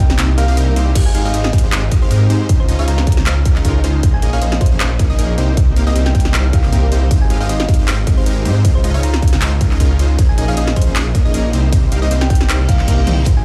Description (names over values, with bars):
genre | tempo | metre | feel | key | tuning
future bass | 156 BPM | 4/4 | swing 54% on 16ths, half-time | unclear | A4 = 440 Hz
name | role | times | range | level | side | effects
thumb-piano-like synth pluck | melody | 0.0-13.4 s | C5 to Bb5 | -29 LUFS | equal | chorus, sidechain pumping, dub echo
glassy digital keys | accompaniment | 0.0-1.0 s | Bb3 to G4 | -32 LUFS | equal | none
supersaw stab | riff | 0.0-13.4 s | Ab3 to F5 | -25 LUFS | equal | sidechain pumping
detuned saw bass | bass | 0.0-13.4 s | Ab1 to Ab2 | -18 LUFS | equal | chorus, sidechain pumping
big-room dance drum kit | drums | 0.1-13.3 s | crash cymbal, handclaps, hi-hat, ride cymbal, snare drum, toms | -25 LUFS | equal | overdrive, studio reverb
electronic kick drum | drums | 1.0-13.3 s | none | -17 LUFS | equal | studio reverb
reverse cymbal | sound effects | 12.6-13.3 s | none | -32 LUFS | equal | none
room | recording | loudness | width
little or no reverb | played on a big sound system in a bare room, stone room reverb | -14 LUFS | mono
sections
1.0-13.4 A section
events
kick drops out 0.2-1.0; drop 1.0-13.4; reverse cymbal 12.6-13.3; drum fill 13.0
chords
0.0 Cm7; 1.0 Abmaj7; 2.5 Dbmaj9; 4.0 Bbm11; 5.4 Cm7; 7.1 Abmaj7; 8.6 Dbmaj9; 10.2 Bbm11; 11.5 Cm7